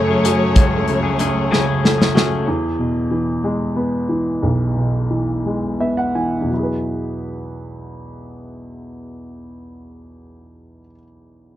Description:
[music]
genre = six-eight pop ballad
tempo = 54-63 BPM (dotted quarters)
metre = 6/8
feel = straight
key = E major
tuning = A4 = 439 Hz
[part]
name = warm baby grand piano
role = accompaniment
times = 0.0-11.6 s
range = B1 to G#5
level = -20 LUFS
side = equal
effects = none
[part]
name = warm studio string section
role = sustained chords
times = 0.0-2.4 s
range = F#2 to C#5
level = -20 LUFS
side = equal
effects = none
[part]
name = clean electric guitar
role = arpeggios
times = 0.0-2.5 s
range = F#2 to G#4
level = -23 LUFS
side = left 7 dB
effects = tape echo
[part]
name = modern studio drum kit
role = drums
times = 0.2-2.3 s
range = hi-hat, kick drum, snare drum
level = -16 LUFS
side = equal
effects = none
[sound]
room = light reverb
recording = none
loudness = -16 LUFS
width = side -13 dB against mid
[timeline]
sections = 0.0-2.5 A section; 2.5-6.5 B section; 6.5-10.9 C section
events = drum fill 1.5-2.5; slowing down 2.5-6.5; grand piano fill 5.4-6.5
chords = 0.0 F#madd9; 2.5 E; 6.5 Eadd9

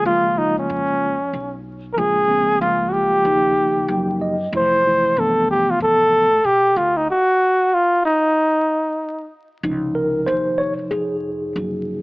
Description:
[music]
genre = hip hop, jazz-hop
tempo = 94 BPM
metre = 4/4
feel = swing 62% on 16ths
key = Db major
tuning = A4 = 440 Hz
[part]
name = breathy flugelhorn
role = melody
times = 0.0-9.3 s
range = Db4 to C5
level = -16 LUFS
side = equal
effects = none
[part]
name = mellow tine electric piano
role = accompaniment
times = 0.0-12.0 s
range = C3 to G5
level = -22 LUFS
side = equal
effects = medium stereo tremolo
[part]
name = upright bass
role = bass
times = 0.1-12.0 s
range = Gb1 to Cb3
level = -30 LUFS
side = equal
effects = none
[sound]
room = light reverb, small room reverb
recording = vinyl crackle, AM radio sound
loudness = -16 LUFS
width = side -25 dB against mid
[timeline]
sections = 0.0-9.6 A section; 9.6-12.0 B section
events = tine electric piano fill 3.6-4.5; stop 7.1-9.6; tine electric piano solo 9.6-12.0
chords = 0.0 Db6; 2.0 Bbm7; 3.3 Eb9; 4.5 Fmaj7; 7.1 N.C.; 9.6 Dbmaj7

